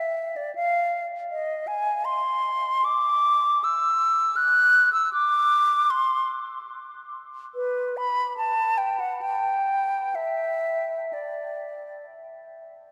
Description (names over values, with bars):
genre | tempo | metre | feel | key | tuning
classical, free, expressive piece for unaccompanied flute | 52-83 BPM | 3/4 | rubato | D mixolydian | A4 = 440 Hz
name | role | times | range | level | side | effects
mellow silver concert flute | solo | 0.0-12.1 s | B4 to F#6 | -24 LUFS | equal | none
room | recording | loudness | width
wet cathedral reverb, RT60 6.3 s | none | -24 LUFS | mono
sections
0.0-12.9 A section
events
none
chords
none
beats
| 0.55 1.32 2.08 | 2.87 3.65 4.38 | 5.13 5.90 6.69 | 7.54 8.37 9.20 | 10.13 11.13 12.06